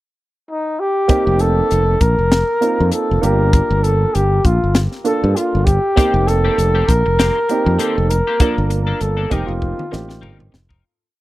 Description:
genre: electric jazz fusion.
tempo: 99 BPM.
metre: 4/4.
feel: swing 56% on 16ths.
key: F mixolydian.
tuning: A4 = 441 Hz.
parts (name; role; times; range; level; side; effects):
trumpet with bucket mute; melody; 0.5-10.5 s; Eb4 to Bb4; -18 LUFS; equal; none.
warm grand piano; accompaniment; 1.1-10.5 s; Bb3 to Bb4; -22 LUFS; right 4 dB; none.
modern bright fingered electric bass; bass; 1.1-10.8 s; F1 to G2; -17 LUFS; equal; none.
crisp fusion drum kit; drums; 1.1-10.8 s; hi-hat, kick drum, snare drum, toms; -17 LUFS; equal; none.
clean electric guitar; stabs; 6.0-10.8 s; Eb3 to Bb4; -26 LUFS; left 6 dB; analog chorus.
room: small room reverb.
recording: dry, close 1970s-style studio recording.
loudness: -13 LUFS.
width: side -17 dB against mid.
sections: 0.0-1.1 pickup bar; 1.1-10.8 A section.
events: fade-out 8.4-10.8; drum fill 9.6-10.8.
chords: 0.0 N.C.; 1.1 F9sus4; 3.2 Gm9; 6.0 F9sus4; 8.4 Gm9; 9.3 F9sus4.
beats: 0.49 | 1.10 1.71 2.32 2.92 | 3.53 4.14 4.75 5.36 | 5.97 6.58 7.18 7.79 | 8.40 9.01 9.62 10.23.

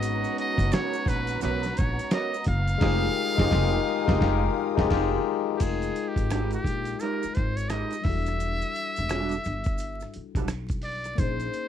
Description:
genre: R&B, neo-soul.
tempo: 86 BPM.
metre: 4/4.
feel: swing 63% on 16ths.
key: unclear.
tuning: A4 = 440 Hz.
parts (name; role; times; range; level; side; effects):
trumpet with metal mute; melody; 0.0-11.7 s; G4 to F5; -31 LUFS; equal; slapback echo.
tine electric piano; accompaniment; 0.0-11.7 s; F#3 to G5; -30 LUFS; left 13 dB; none.
warm studio string section; sustained chords; 0.0-5.6 s; Gb4 to Eb6; -40 LUFS; right 2 dB; none.
warm horn section; stabs; 0.0-5.1 s; C4 to Ab4; -34 LUFS; right 9 dB; none.
upright bass; bass; 0.0-11.5 s; E1 to Cb2; -29 LUFS; equal; none.
dusty soul sampler-style drum kit; drums; 0.0-11.7 s; crash cymbal, hi-hat, kick drum, rim click, snare drum; -27 LUFS; equal; none.
maracas and finger snaps; percussion; 0.0-11.7 s; none; -48 LUFS; right 17 dB; none.
electric guitar through a small old amp; second line; 0.7-10.5 s; G3 to Db5; -31 LUFS; right 8 dB; lush chorus.
room: little or no reverb.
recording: dry, close 1970s-style studio recording, vinyl crackle.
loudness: -24 LUFS.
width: side -9 dB against mid.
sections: 0.0-5.6 A section; 5.6-11.7 B section.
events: band accent 2.8-5.6; kick muted 4.2-5.6.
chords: 0.0 Abm11; 2.8 Fm11; 8.0 Em11.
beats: | 0.02 0.72 1.42 2.12 | 2.81 3.51 4.21 4.91 | 5.60 6.30 7.00 7.70 | 8.39 9.09 9.79 10.49 | 11.19.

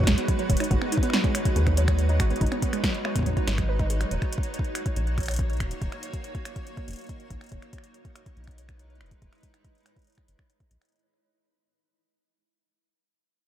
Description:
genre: IDM.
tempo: 141 BPM.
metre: 4/4.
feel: straight.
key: G# minor.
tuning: A4 = 441 Hz.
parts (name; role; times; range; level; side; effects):
granular cloud pad; sustained chords; 0.0-10.9 s; G#3 to C#5; -34 LUFS; right 1 dB; built-in reverb.
electronic kick drum; drums; 0.0-10.7 s; none; -27 LUFS; equal; overdrive.
pulsing gated texture; texture; 0.0-10.9 s; C#5; -38 LUFS; right 3 dB; chorus, built-in reverb, sidechain pumping.
warbly dusty pluck; arpeggios; 0.1-4.1 s; F#3 to B4; -31 LUFS; right 4 dB; chorus, phaser, dub echo.
rubbery square bass; bass; 0.1-10.8 s; D#1 to D#2; -25 LUFS; equal; none.
electro analog drum machine; drums; 0.1-11.0 s; finger snaps, hi-hat, snare drum; -31 LUFS; left 1 dB; overdrive, analog delay.
room: digital ambience.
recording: echo-heavy mix.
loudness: -23 LUFS.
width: side -11 dB against mid.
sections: 0.0-10.9 A section.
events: fade-out 0.0-10.9; filter sweep on analog synth bass 0.0-10.9.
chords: 0.0 G#m7; 4.1 D#m7; 7.5 Emaj7.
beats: 0.28 | 0.71 1.13 1.56 1.99 | 2.41 2.84 3.26 3.69 | 4.11 4.54 4.96 5.39 | 5.82 6.24 6.67 7.09 | 7.52 7.94 8.37 8.79 | 9.22 9.64 10.07 10.50.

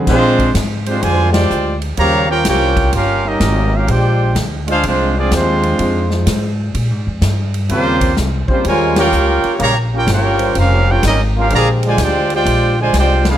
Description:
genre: jazz, big band swing.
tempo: 126 BPM.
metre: 4/4.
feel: swing 67% on 8ths.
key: Bb major.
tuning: A4 = 441 Hz.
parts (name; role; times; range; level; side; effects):
upright bass; bass; 0.0-13.4 s; F1 to Bb2; -16 LUFS; equal; none.
clear trumpet section; melody; 0.1-13.4 s; Ab3 to Bb5; -16 LUFS; right 1 dB; none.
warm trombone section; second line; 0.1-13.4 s; Db3 to G4; -20 LUFS; right 1 dB; none.
mellow trombone section; sustained chords; 0.1-12.2 s; G3 to C5; -23 LUFS; left 1 dB; none.
swinging big-band drum kit; drums; 0.1-13.3 s; crash cymbal, hi-hat, kick drum, ride cymbal, snare drum; -22 LUFS; equal; none.
room: light reverb.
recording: none.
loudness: -12 LUFS.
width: side -11 dB against mid.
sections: 0.1-13.4 A section.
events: band accent 1.3, 8.9, 13.2.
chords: 0.1 Bb13; 2.0 Eb13; 3.9 Bb13; 5.8 Fm7; 6.7 Bb5; 7.7 Eb13; 11.5 Bb13.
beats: | 0.07 0.55 1.02 1.50 | 1.98 2.45 2.93 3.40 | 3.88 4.36 4.83 5.31 | 5.79 6.26 6.74 7.22 | 7.69 8.17 8.65 9.12 | 9.60 10.07 10.55 11.03 | 11.51 11.98 12.46 12.93.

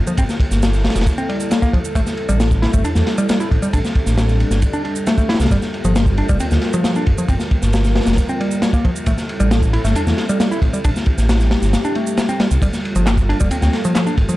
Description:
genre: breakbeat, breaks.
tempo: 135 BPM.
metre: 4/4.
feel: straight.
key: G dorian.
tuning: A4 = 442 Hz.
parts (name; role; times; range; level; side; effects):
dark analog pad; sustained chords; 0.0-14.4 s; G3 to Bb4; -24 LUFS; left 1 dB; chorus, sidechain pumping.
dark detuned saw bass; bass; 0.0-14.2 s; F1 to E2; -17 LUFS; equal; none.
picked electric bass; riff; 0.1-14.3 s; F3 to E4; -21 LUFS; equal; dub echo.
electronic shaker and handclaps; drums; 0.1-14.4 s; none; -32 LUFS; right 4 dB; none.
crunchy breakbeat drum kit; drums; 0.2-14.3 s; kick drum, ride cymbal, snare drum; -18 LUFS; equal; none.
room: moderate studio reverb, RT60 0.6 s.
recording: dark, warm production.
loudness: -14 LUFS.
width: side -17 dB against mid.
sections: 0.0-14.4 A section.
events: kick drops out 11.7-12.6.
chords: 0.0 Gm9; 2.0 Am7; 5.5 Gm9; 9.1 Am7; 12.6 Gm9.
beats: | 0.18 0.62 1.07 1.51 | 1.96 2.40 2.85 3.29 | 3.74 4.18 4.62 5.07 | 5.51 5.96 6.40 6.85 | 7.29 7.74 8.18 8.62 | 9.07 9.51 9.96 10.40 | 10.85 11.29 11.74 12.18 | 12.62 13.07 13.51 13.96.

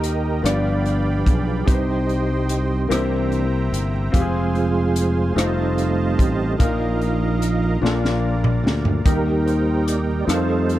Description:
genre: slow gospel.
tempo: 49 BPM (dotted quarters).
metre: 6/8.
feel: straight.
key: Eb major.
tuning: A4 = 439 Hz.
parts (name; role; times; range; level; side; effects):
clear grand piano; accompaniment; 0.0-10.8 s; G2 to Eb5; -24 LUFS; left 3 dB; none.
musette accordion; sustained chords; 0.0-10.8 s; Eb4 to C6; -31 LUFS; right 4 dB; none.
percussive tonewheel organ; sustained chords; 0.0-10.8 s; E3 to D5; -24 LUFS; right 4 dB; fast rotary speaker, chorus vibrato.
modern bright fingered electric bass; bass; 0.0-10.8 s; F1 to F2; -22 LUFS; equal; none.
crisp fusion drum kit; drums; 0.0-10.8 s; hi-hat, kick drum, rim click, snare drum, toms; -21 LUFS; equal; none.
room: little or no reverb.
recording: none.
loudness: -18 LUFS.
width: side -14 dB against mid.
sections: 0.0-10.8 A section.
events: tonewheel organ solo 0.0-10.8; drum fill 7.8-9.1.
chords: 0.4 G7; 1.7 Cm; 2.9 C7; 4.1 Fm; 5.4 F7; 6.6 Bbsus4; 7.8 Bb; 9.1 Eb.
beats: 0.44 | 1.67 2.90 | 4.14 5.37 | 6.60 7.83 | 9.06 10.29.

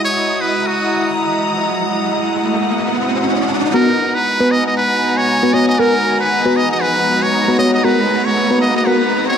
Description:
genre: deep house.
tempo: 117 BPM.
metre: 4/4.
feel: swing 58% on 16ths.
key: G# minor.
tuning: A4 = 440 Hz.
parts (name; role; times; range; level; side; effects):
trumpet with metal mute; melody; 0.0-9.4 s; F#4 to D#5; -18 LUFS; right 1 dB; tape echo.
warbly tape-like pad; sustained chords; 0.0-9.4 s; G#3 to D#5; -22 LUFS; right 2 dB; chorus, built-in reverb.
riser; sound effects; 1.1-9.4 s; none; -22 LUFS; equal; none.
dark studio string section; texture; 0.0-9.4 s; B3 to A#5; -21 LUFS; left 2 dB; none.
string machine, violins; texture; 0.0-9.4 s; A#5 to D#6; -26 LUFS; right 1 dB; ensemble chorus.
mellow FM electric piano; stabs; 3.7-9.0 s; B3 to C#5; -17 LUFS; left 1 dB; chorus, phaser, low-pass filter, ping-pong delay.
room: moderate plate reverb, RT60 3.1 s.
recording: vinyl crackle, high-pass filter.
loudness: -13 LUFS.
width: side -8 dB against mid.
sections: 0.0-3.7 A section; 3.7-9.4 B section.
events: riser 1.1-3.7, 3.7-9.4; build-up 3.7-9.4; filter sweep on FM electric piano 3.7-9.4.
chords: 0.0 Emaj9; 3.7 G#m7.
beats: 0.15 0.66 1.18 | 1.69 2.20 2.71 3.23 | 3.74 4.25 4.77 5.28 | 5.79 6.30 6.82 7.33 | 7.84 8.36 8.87.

